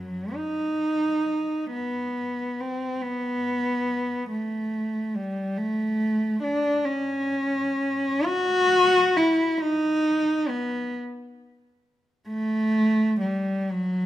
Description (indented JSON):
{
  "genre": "classical, free, expressive piece for unaccompanied cello",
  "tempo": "38-48 BPM (dotted quarters)",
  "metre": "6/8",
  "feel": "rubato",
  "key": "unclear",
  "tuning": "A4 = 437 Hz",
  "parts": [
    { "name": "warm cello", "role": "solo", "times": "0.0-14.1 s", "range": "F#2 to F#4", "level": "-23 LUFS", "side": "equal", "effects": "none" }
  ],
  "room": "moderate recital hall reverb, RT60 1.6 s",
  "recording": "close, detailed microphones",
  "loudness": "-22 LUFS",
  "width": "side -13 dB against mid",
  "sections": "0.0-14.1 A section",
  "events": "none",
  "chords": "none"
}